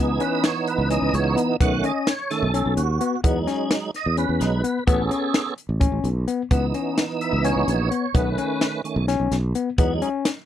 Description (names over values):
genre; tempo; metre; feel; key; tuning
progressive instrumental, band music in an uneven meter; 257 BPM (eighths); 7/8; straight; C# minor; A4 = 439 Hz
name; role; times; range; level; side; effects
tonewheel organ; accompaniment; 0.0-10.1 s; D#3 to F#5; -24 LUFS; right 5 dB; chorus vibrato, slow rotary speaker
overdriven tine electric piano; arpeggios; 0.0-10.3 s; B3 to C#4; -25 LUFS; left 7 dB; none
sustaining fretless electric bass; bass; 0.0-10.0 s; A1 to E2; -23 LUFS; equal; none
compact cocktail drum kit; drums; 0.2-10.4 s; hi-hat, kick drum, snare drum; -23 LUFS; equal; none
room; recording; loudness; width
light reverb; dry, close 1970s-style studio recording; -20 LUFS; side -11 dB against mid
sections
0.0-10.5 A section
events
tonewheel organ solo 0.0-10.5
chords
0.0 C#m7; 1.6 B7; 3.2 Emaj7; 4.9 Amaj7; 6.5 C#m7; 8.1 B7; 9.8 Emaj7